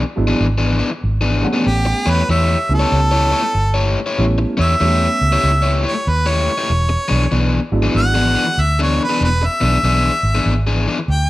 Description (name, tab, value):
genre	electric blues shuffle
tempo	95 BPM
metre	4/4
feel	swing 64% on 8ths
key	unclear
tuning	A4 = 442 Hz
part	overdriven electric guitar	riff	0.0-11.0 s	E3 to C#5	-20 LUFS	left 3 dB	spring reverb
part	vintage muted fingered electric bass	bass	0.0-11.3 s	E1 to E2	-17 LUFS	equal	none
part	warm upright piano	accompaniment	0.2-8.5 s	F#3 to F#5	-22 LUFS	right 2 dB	none
part	bright harmonica	melody	1.7-11.3 s	G4 to G5	-18 LUFS	right 1 dB	overdrive, plate reverb
room	light reverb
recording	none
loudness	-14 LUFS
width	side -17 dB against mid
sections	0.0-11.3 A section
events	harmonica solo 0.0-11.3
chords	0.0 E7; 1.7 A7; 6.7 E7